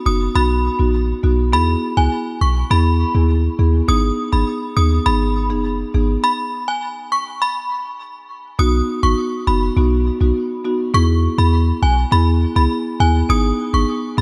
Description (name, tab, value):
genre	dancehall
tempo	102 BPM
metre	4/4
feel	straight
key	B major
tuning	A4 = 439 Hz
part	marimba with medium mallets	accompaniment	0.0-14.2 s	B3 to G#4	-23 LUFS	equal	none
part	synth chime	melody	0.1-14.2 s	G#5 to D#6	-24 LUFS	equal	ensemble chorus, diffuse ambient delay
part	clean 808-style bass	bass	0.1-14.2 s	F#1 to E2	-18 LUFS	equal	none
room	light reverb, studio reverb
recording	none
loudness	-17 LUFS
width	mono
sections	0.0-8.6 A section; 8.6-14.2 B section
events	stop 6.2-8.6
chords	0.0 B; 1.5 E; 3.9 G#m; 6.2 N.C.; 8.6 B; 10.9 E; 13.3 G#m